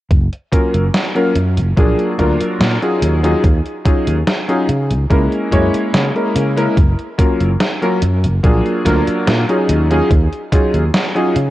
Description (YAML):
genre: vaporwave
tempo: 72 BPM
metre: 4/4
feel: straight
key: unclear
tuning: A4 = 440 Hz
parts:
  - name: sustaining fretless electric bass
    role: bass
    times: 0.1-11.5 s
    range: Gb1 to Db3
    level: -16 LUFS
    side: equal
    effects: wide subtle chorus
  - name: electronic kick drum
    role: drums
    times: 0.1-10.7 s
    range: none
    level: -14 LUFS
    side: equal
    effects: none
  - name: gated 80s digital drum machine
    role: drums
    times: 0.1-11.5 s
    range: hi-hat, snare drum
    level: -20 LUFS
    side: equal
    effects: gated reverb, gated reverb snare
  - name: clear electric grand piano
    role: accompaniment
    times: 0.5-11.3 s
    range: Gb3 to Db5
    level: -16 LUFS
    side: left 1 dB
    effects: lush chorus, vintage 12-bit sampler grit, analog delay
room: light reverb, digital ambience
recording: worn, warbling old tape, cassette tape, warbly pitch drift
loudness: -13 LUFS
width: side -15 dB against mid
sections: 0.1-11.5 A section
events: none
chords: 0.1 Gbmaj7; 1.8 Bb7b13; 3.0 Ebm11; 4.7 Dbm6; 6.8 Gbmaj7; 8.4 Bb7b13; 9.7 Ebm11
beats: | 0.11 0.94 1.77 2.61 | 3.44 4.27 5.11 5.94 | 6.77 7.61 8.44 9.27 | 10.11 10.94